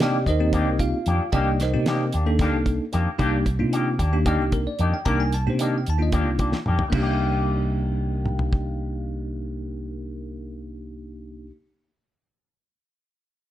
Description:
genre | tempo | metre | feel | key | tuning
electric jazz fusion | 225 BPM (eighths) | 7/8 | straight | C minor | A4 = 436 Hz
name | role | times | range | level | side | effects
bell-like tine electric piano | accompaniment | 0.0-11.5 s | Bb3 to Bb5 | -26 LUFS | equal | fast stereo tremolo
electric guitar with an envelope filter | stabs | 0.0-11.6 s | Eb3 to G4 | -29 LUFS | left 4 dB | lush chorus
mellow fretless electric bass | bass | 0.0-11.5 s | C2 to C3 | -24 LUFS | equal | lush chorus
damped 70s drum kit | drums | 0.0-8.7 s | crash cymbal, hi-hat, kick drum, snare drum, toms | -26 LUFS | equal | none
room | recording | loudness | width
light reverb | none | -21 LUFS | side -13 dB against mid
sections
0.0-6.9 A section; 6.9-10.7 B section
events
drum fill 6.5-6.9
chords
0.0 Cm9

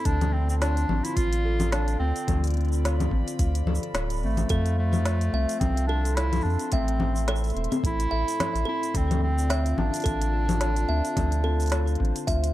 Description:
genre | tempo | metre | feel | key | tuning
folktronica | 108 BPM | 4/4 | swing 56% on 16ths | unclear | A4 = 439 Hz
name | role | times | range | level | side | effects
warm clarinet | melody | 0.0-12.5 s | A3 to F4 | -30 LUFS | right 1 dB | tape echo
warbly tape-like pad | sustained chords | 0.0-12.5 s | F4 to C6 | -38 LUFS | left 1 dB | chorus, built-in reverb, phaser
Celtic harp | arpeggios | 0.0-12.5 s | A2 to A4 | -34 LUFS | left 4 dB | tape echo
warm sub bass | bass | 0.1-12.5 s | D1 to F2 | -25 LUFS | equal | none
electronic kick drum | drums | 0.1-12.4 s | none | -27 LUFS | equal | none
organic electronic drum kit | drums | 0.1-12.5 s | cabasa, congas, hi-hat, snare drum | -30 LUFS | left 2 dB | none
music box | second line | 4.5-12.5 s | A4 to E5 | -34 LUFS | right 1 dB | tape echo
room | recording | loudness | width
light reverb | dark, warm production | -23 LUFS | side -15 dB against mid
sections
0.0-12.5 A section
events
none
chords
0.1 Dm7; 4.5 F; 6.7 Am; 8.9 Dm7

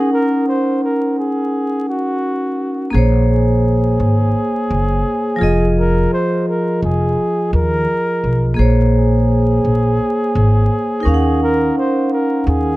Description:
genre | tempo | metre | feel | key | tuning
lo-fi hip hop | 85 BPM | 4/4 | swing 60% on 16ths | Bb minor | A4 = 441 Hz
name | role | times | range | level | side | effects
breathy flugelhorn | melody | 0.0-12.8 s | Gb4 to C5 | -21 LUFS | right 1 dB | low-pass filter, analog delay
vibraphone with medium hard mallets | accompaniment | 0.0-12.8 s | F3 to Gb5 | -17 LUFS | equal | cassette tape, low-pass filter
upright bass | bass | 2.9-12.8 s | F1 to Eb2 | -15 LUFS | equal | none
room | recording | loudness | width
wet small room reverb, RT60 0.6 s | dark, warm production, vinyl crackle | -14 LUFS | side -19 dB against mid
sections
0.0-2.9 A section; 2.9-12.8 B section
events
none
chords
0.0 Ebm7; 2.9 Bbm9; 5.4 Fm7; 8.6 Bbm9; 11.1 Ebm7

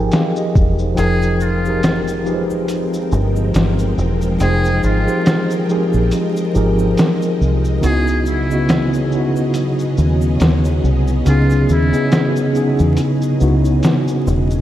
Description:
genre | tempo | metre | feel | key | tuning
lo-fi hip hop | 70 BPM | 4/4 | swing 57% on 16ths | unclear | A4 = 439 Hz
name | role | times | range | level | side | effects
mellow tine electric piano | accompaniment | 0.0-14.6 s | Db3 to Ab5 | -17 LUFS | equal | medium stereo tremolo, cassette tape
deep dub fingered electric bass | bass | 0.0-14.6 s | E1 to Fb2 | -17 LUFS | equal | none
lo-fi sampler-style drum kit | drums | 0.1-14.6 s | hi-hat, kick drum, shaker, snare drum | -19 LUFS | equal | none
trumpet with metal mute | melody | 1.0-12.3 s | Fb4 to Ab4 | -25 LUFS | equal | diffuse ambient delay
string machine, violas | sustained chords | 1.0-14.6 s | F3 to G5 | -25 LUFS | equal | ensemble chorus
tube shaker | percussion | 1.0-14.6 s | none | -46 LUFS | left 6 dB | none
room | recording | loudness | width
moderate lush hall reverb, RT60 2.7 s | dreamy mix soaked in reverb, vinyl crackle | -14 LUFS | side -12 dB against mid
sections
1.0-14.6 A section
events
tine electric piano fill 0.0-1.0; kick muted 1.0-14.6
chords
0.0 Fm11; 7.8 Dbm11

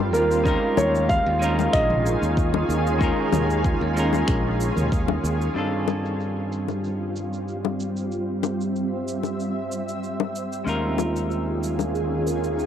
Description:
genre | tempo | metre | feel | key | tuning
sunset chillout | 94 BPM | 4/4 | straight | unclear | A4 = 440 Hz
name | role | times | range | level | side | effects
warm grand piano | melody | 0.0-4.9 s | A4 to F5 | -24 LUFS | right 1 dB | cassette tape, tape echo, plate reverb
clean electric guitar | accompaniment | 0.0-12.7 s | G3 to Bb4 | -29 LUFS | left 1 dB | auto-pan, tape echo, plate reverb
shimmering ambient pad | sustained chords | 0.0-12.7 s | Eb3 to E5 | -26 LUFS | equal | chorus, built-in reverb, plate reverb
modern bright fingered electric bass | bass | 0.0-12.7 s | Bb1 to G2 | -27 LUFS | equal | none
deep house drum kit | drums | 0.1-12.7 s | cabasa, finger snaps, toms | -35 LUFS | right 1 dB | low-pass filter on perc, low-pass filter on snare, low-pass filter on toms
electronic kick drum | drums | 0.5-5.1 s | none | -25 LUFS | equal | none
bongos | percussion | 0.8-11.9 s | none | -26 LUFS | left 12 dB | none
kalimba | arpeggios | 11.0-12.4 s | F4 to Bb4 | -30 LUFS | right 9 dB | tape echo, plate reverb
room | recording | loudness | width
moderate small room reverb, RT60 0.5 s | home recording on cassette | -21 LUFS | side -9 dB against mid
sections
0.0-5.6 A section; 5.6-12.7 B section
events
filter sweep on ambient pad 5.6-12.7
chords
0.5 Eb9sus4; 5.6 G9sus4; 10.7 Eb9sus4

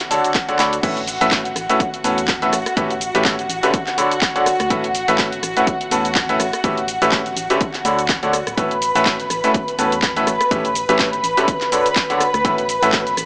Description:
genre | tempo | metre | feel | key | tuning
piano house | 124 BPM | 4/4 | swing 56% on 16ths | A major | A4 = 442 Hz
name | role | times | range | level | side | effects
muted symphonic violin section | sustained chords | 0.0-13.3 s | F#4 to B5 | -21 LUFS | equal | vintage 12-bit sampler grit, sidechain pumping
garage drum kit | drums | 0.0-13.3 s | crash cymbal, handclaps, hi-hat, rim click, shaker | -22 LUFS | equal | none
bright baby grand piano | riff | 0.1-13.0 s | A2 to B5 | -19 LUFS | equal | sidechain pumping
electronic kick drum | drums | 0.3-13.0 s | none | -24 LUFS | equal | overdrive
organ-like FM bass | bass | 0.6-13.3 s | D1 to E2 | -32 LUFS | equal | sidechain pumping
room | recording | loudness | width
light reverb | small speaker sound | -15 LUFS | side -38 dB against mid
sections
0.8-13.3 A section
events
drum fill 0.6; drop 0.8-13.3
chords
0.0 Dmaj7; 0.8 A69; 2.5 A9; 3.7 Dmaj7; 4.7 A69; 6.4 A9; 7.6 Dmaj7; 8.6 A69; 10.3 A9; 11.5 Dmaj7; 12.4 A69

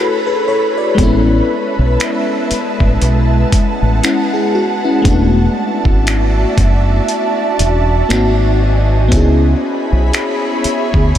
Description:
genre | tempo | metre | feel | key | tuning
contemporary R&B | 59 BPM | 4/4 | swing 58% on 16ths | unclear | A4 = 440 Hz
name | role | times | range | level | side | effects
FM electric piano with soft pad layer | accompaniment | 0.0-11.2 s | G#3 to D5 | -17 LUFS | left 2 dB | chorus, tremolo
ethereal airy pad | sustained chords | 0.0-11.2 s | G#3 to B5 | -18 LUFS | equal | ensemble chorus, built-in reverb, sidechain pumping
deep dub fingered electric bass | bass | 1.0-11.2 s | E1 to D2 | -13 LUFS | equal | none
dusty soul sampler-style drum kit | drums | 1.0-11.2 s | finger snaps, hi-hat, kick drum | -18 LUFS | equal | overdrive
room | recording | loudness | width
moderate huge ambient reverb, RT60 7.8 s | dreamy mix soaked in reverb | -11 LUFS | side -11 dB against mid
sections
0.0-11.2 A section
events
none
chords
0.0 Bm9; 1.0 Amaj7; 5.1 E9sus4; 8.1 G#7; 9.1 C#m7

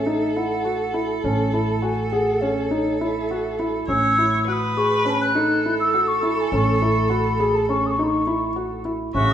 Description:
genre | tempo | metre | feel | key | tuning
contemporary instrumental, chamber music in an uneven meter | 205 BPM (eighths) | 9/8 | straight | A lydian | A4 = 439 Hz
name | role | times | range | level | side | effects
mellow hollow wooden flute | melody | 0.0-9.3 s | C#5 to F#6 | -24 LUFS | left 1 dB | none
clear viola | second line | 0.0-9.3 s | A4 to E5 | -26 LUFS | right 2 dB | none
upright bass | bass | 0.0-9.3 s | A1 | -26 LUFS | equal | none
felt-muted upright piano | arpeggios | 0.1-9.3 s | C#4 to G#4 | -23 LUFS | equal | none
warm woodwind section | sustained chords | 9.2-9.3 s | C#3 to F#4 | -24 LUFS | right 2 dB | none
room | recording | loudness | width
wet recital hall reverb, RT60 1.4 s | recorded in a church or concert hall | -19 LUFS | side -9 dB against mid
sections
0.0-9.3 A section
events
none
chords
0.0 A

